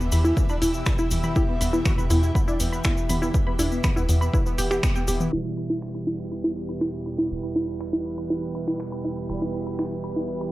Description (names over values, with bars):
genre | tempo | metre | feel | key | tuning
melodic techno | 121 BPM | 4/4 | straight | E minor | A4 = 440 Hz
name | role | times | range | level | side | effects
wide unison lead | melody | 0.0-5.3 s | E3 to G4 | -32 LUFS | equal | ensemble chorus, cassette tape, sidechain pumping, tape echo
evolving wavetable pad | sustained chords | 0.0-10.5 s | E3 to E5 | -34 LUFS | right 1 dB | chorus, built-in reverb, sidechain pumping, cassette tape
tight sequencer bass | bass | 0.0-10.5 s | E1 to E2 | -24 LUFS | equal | sidechain pumping
bowed-like drone | drone | 0.0-10.5 s | E2 to B2 | -37 LUFS | right 1 dB | built-in reverb, sidechain pumping, cassette tape
cabasa | percussion | 0.0-5.3 s | none | -35 LUFS | left 3 dB | none
warbly dusty pluck | arpeggios | 0.1-10.5 s | E4 to B5 | -28 LUFS | equal | chorus, cassette tape, sidechain pumping, tape echo
techno drum kit | drums | 0.1-9.9 s | crash cymbal, finger snaps, hi-hat, toms | -31 LUFS | equal | overdrive
electronic kick drum | drums | 0.4-4.9 s | none | -24 LUFS | equal | none
sync-sweep polysynth | stabs | 5.3-10.5 s | B2 to G3 | -32 LUFS | right 2 dB | chorus, sidechain pumping, cassette tape, tape echo
downlifter | sound effects | 5.7-9.3 s | none | -62 LUFS | right 1 dB | none
room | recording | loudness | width
light reverb, digital ambience | home recording on cassette, low-pass filter | -22 LUFS | side -17 dB against mid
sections
0.0-5.3 A section; 5.3-10.5 B section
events
band accent 4.8; filter sweep on synth arpeggio sound 5.3-10.5; filter sweep on ambient pad 5.3-10.5; filter sweep 5.3-10.5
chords
0.0 Em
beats
0.37 0.86 | 1.36 1.86 2.35 2.85 | 3.34 3.84 4.33 4.83 | 5.33 5.82 6.32 6.82 | 7.31 7.81 8.30 8.80 | 9.29 9.79 10.29